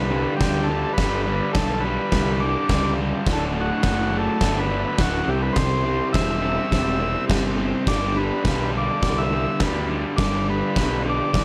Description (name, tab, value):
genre	garage rock duo or trio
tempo	104 BPM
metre	4/4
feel	straight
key	unclear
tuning	A4 = 439 Hz
part	combo organ	melody	0.0-11.4 s	F#4 to E5	-28 LUFS	equal	none
part	combo organ	sustained chords	0.0-11.4 s	D4 to D5	-37 LUFS	equal	none
part	crunchy overdriven guitar	riff	0.0-11.4 s	D2 to C4	-27 LUFS	equal	spring reverb
part	fuzz picked electric bass	bass	0.0-11.4 s	D1 to D2	-29 LUFS	equal	overdrive
part	oversized low-tuned drum kit	drums	0.4-11.4 s	crash cymbal, kick drum, snare drum	-28 LUFS	equal	none
room	light reverb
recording	none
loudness	-22 LUFS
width	mono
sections	0.0-11.4 A section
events	none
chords	0.0 G; 3.3 D; 5.3 C; 7.9 G